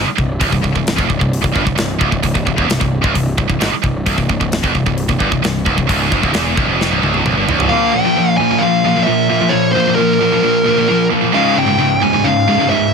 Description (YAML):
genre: heavy metal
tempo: 132 BPM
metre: 4/4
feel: straight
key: C phrygian dominant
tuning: A4 = 436 Hz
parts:
  - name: heavy high-gain guitar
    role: riff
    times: 0.0-12.9 s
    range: C2 to Bb3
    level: -18 LUFS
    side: right 14 dB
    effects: distortion
  - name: scooped high-gain guitar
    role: riff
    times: 0.0-12.9 s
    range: C2 to Bb3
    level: -19 LUFS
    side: left 11 dB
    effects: distortion
  - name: fuzz picked electric bass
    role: bass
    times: 0.0-7.7 s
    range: C1 to Ab1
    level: -20 LUFS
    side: equal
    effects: overdrive
  - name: tight metal drum kit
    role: drums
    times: 0.2-7.7 s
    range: hi-hat, kick drum, snare drum, toms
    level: -19 LUFS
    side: equal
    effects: none
  - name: high-gain lead guitar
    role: melody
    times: 7.7-12.9 s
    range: Bb4 to Ab5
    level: -15 LUFS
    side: left 1 dB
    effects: distortion
  - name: crunchy overdriven guitar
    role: riff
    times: 7.7-12.9 s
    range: Db2 to Bb3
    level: -18 LUFS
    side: equal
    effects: none
room: light reverb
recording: none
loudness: -12 LUFS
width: side -5 dB against mid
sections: 0.0-7.7 A section; 7.7-12.9 B section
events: drum fill 6.8-7.7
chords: 0.0 C; 7.7 Bb5; 11.3 Db